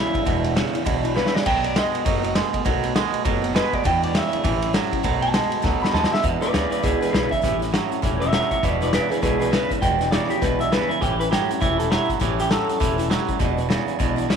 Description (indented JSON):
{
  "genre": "rockabilly",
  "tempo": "201 BPM",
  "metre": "4/4",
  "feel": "swing 60% on 8ths",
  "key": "E mixolydian",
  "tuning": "A4 = 440 Hz",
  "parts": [
    { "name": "electric guitar through a small old amp", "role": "melody", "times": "0.0-12.9 s", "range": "E4 to B5", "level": "-24 LUFS", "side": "equal", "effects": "tape echo" },
    { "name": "picked steel-string acoustic guitar", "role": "accompaniment", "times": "0.0-14.4 s", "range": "E2 to F#4", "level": "-29 LUFS", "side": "left 15 dB", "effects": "none" },
    { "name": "twangy electric guitar", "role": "riff", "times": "0.0-14.4 s", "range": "E2 to G#3", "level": "-25 LUFS", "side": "right 14 dB", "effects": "none" },
    { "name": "upright bass", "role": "bass", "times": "0.1-14.3 s", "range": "E1 to E2", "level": "-28 LUFS", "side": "left 1 dB", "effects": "none" },
    { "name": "vintage drum kit", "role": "drums", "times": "0.1-14.4 s", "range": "crash cymbal, hi-hat, kick drum, ride cymbal, snare drum", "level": "-24 LUFS", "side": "left 1 dB", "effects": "none" }
  ],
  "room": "light reverb, small room ambience",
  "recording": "1960s-style stereo with parts hard left and right",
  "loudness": "-19 LUFS",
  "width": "side -7 dB against mid",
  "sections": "0.0-6.2 A section; 6.2-14.4 B section",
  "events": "clean electric guitar solo 0.0-6.2; drum fill 1.2-1.5, 5.6-6.2",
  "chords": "0.0 E7; 1.5 B7; 3.8 E7; 4.4 A7; 5.0 B7; 6.2 E7; 7.4 A7; 8.6 E7; 11.0 A7; 13.4 E7"
}